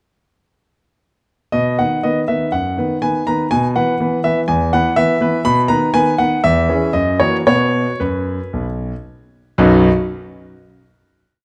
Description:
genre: classical-period piano sonatina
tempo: 112-125 BPM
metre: 4/4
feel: straight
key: B major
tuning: A4 = 440 Hz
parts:
  - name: clear grand piano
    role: solo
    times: 1.5-9.9 s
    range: B1 to B5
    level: -16 LUFS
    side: equal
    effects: none
room: moderate recital hall reverb, RT60 1.4 s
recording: close, detailed microphones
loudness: -16 LUFS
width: mono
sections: 1.5-9.6 A section; 9.6-11.4 final chord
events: none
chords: 1.5 B; 3.5 E5/B; 5.5 B; 6.4 C#m/E; 6.9 F#7; 7.5 B5; 9.6 B

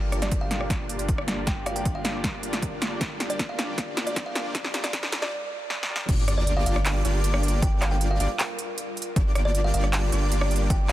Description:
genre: future bass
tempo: 156 BPM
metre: 4/4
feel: half-time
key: G minor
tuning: A4 = 440 Hz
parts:
  - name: bright grand piano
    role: accompaniment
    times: 0.0-6.1 s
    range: Bb3 to D5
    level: -45 LUFS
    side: left 2 dB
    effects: none
  - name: ethereal airy pad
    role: sustained chords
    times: 0.2-10.9 s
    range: G3 to Bb4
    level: -40 LUFS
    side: equal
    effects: ensemble chorus, built-in reverb, sidechain pumping
  - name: supersaw chords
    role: riff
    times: 0.0-10.9 s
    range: Bb3 to D5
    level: -32 LUFS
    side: equal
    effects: sidechain pumping, low-pass filter
  - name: saturated sub bass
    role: bass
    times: 0.0-10.9 s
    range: G1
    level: -26 LUFS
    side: equal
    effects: sidechain pumping
  - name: riser and sub drop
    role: sound effects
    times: 0.0-7.6 s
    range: none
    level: -42 LUFS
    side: equal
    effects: none
  - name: big-room dance drum kit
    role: drums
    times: 0.1-10.9 s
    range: crash cymbal, handclaps, hi-hat, rim click, snare drum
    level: -29 LUFS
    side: equal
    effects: overdrive
  - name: kalimba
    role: melody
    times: 0.2-10.9 s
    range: D5 to G5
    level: -34 LUFS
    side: right 1 dB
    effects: sidechain pumping
  - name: electronic kick drum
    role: drums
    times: 0.3-10.8 s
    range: none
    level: -27 LUFS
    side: equal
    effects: overdrive
  - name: airy dreamy lead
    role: arpeggios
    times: 6.1-10.9 s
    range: D5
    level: -37 LUFS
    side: left 1 dB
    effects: chorus, phaser, sidechain pumping, tape echo
room: little or no reverb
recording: dense, heavily limited modern master, high-pass filter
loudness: -23 LUFS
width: side -14 dB against mid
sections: 0.0-6.1 A section; 6.1-10.9 B section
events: build-up 0.0-6.1; drum fill 0.0-5.3, 5.7-6.1; filter sweep on supersaw synth 0.0-6.1; filter sweep 0.0-6.1; break 5.3-6.1; drop 6.1-10.9; impact 6.1-7.6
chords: 0.0 Gm7

